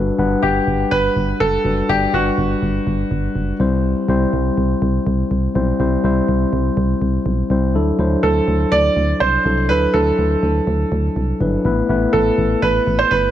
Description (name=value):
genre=1980s-style pop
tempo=123 BPM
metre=4/4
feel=straight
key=unclear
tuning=A4 = 440 Hz
part: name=mellow tine electric piano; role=accompaniment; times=0.0-13.3 s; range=F#3 to F#5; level=-19 LUFS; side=left 3 dB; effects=none
part: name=solid FM bass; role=bass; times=0.0-13.3 s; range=F#1 to D2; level=-20 LUFS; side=right 1 dB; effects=none
part: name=warm baby grand piano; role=melody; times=0.4-3.6, 8.2-13.3 s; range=F#4 to D5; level=-18 LUFS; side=right 2 dB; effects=none
room=moderate plate reverb, RT60 3.1 s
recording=nothing above 11.0 kHz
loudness=-15 LUFS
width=side -11 dB against mid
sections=0.0-13.3 A section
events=none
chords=0.0 Gmaj7; 3.6 C; 7.7 Dadd9; 11.7 Asus2